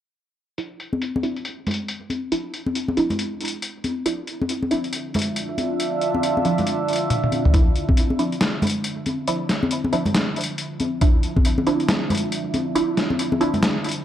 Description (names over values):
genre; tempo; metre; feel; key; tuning
deep dubstep; 138 BPM; 4/4; swing 61% on 16ths, half-time; D minor; A4 = 440 Hz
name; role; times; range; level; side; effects
filtered dub chord stab; stabs; 0.6-13.6 s; F3 to E4; -26 LUFS; right 2 dB; phaser, wide subtle chorus, dub echo
trip hop sampler-style drum kit; drums; 0.6-14.0 s; hi-hat, snare drum, toms; -24 LUFS; left 1 dB; low-pass filter on hats, low-pass filter on toms, low-pass filter on snare, low-pass filter on room
congas; percussion; 0.9-13.6 s; none; -25 LUFS; left 2 dB; dub echo
deep dark ambient pad; sustained chords; 5.1-14.0 s; D4 to E5; -26 LUFS; right 2 dB; chorus, built-in reverb, vintage 12-bit sampler grit
electronic kick drum; drums; 7.5-8.0, 11.0-11.4 s; none; -17 LUFS; equal; none
room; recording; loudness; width
moderate echo chamber reverb, RT60 1.7 s; dark, warm production; -20 LUFS; side -11 dB against mid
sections
0.6-7.5 A section; 7.5-14.0 B section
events
filter sweep on drum 0.6-7.5; filter sweep on synth stab 0.6-7.5; drum fill 7.1-7.5; build-up 7.5-14.0; filter sweep on ambient pad 7.5-14.0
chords
0.6 Dmadd9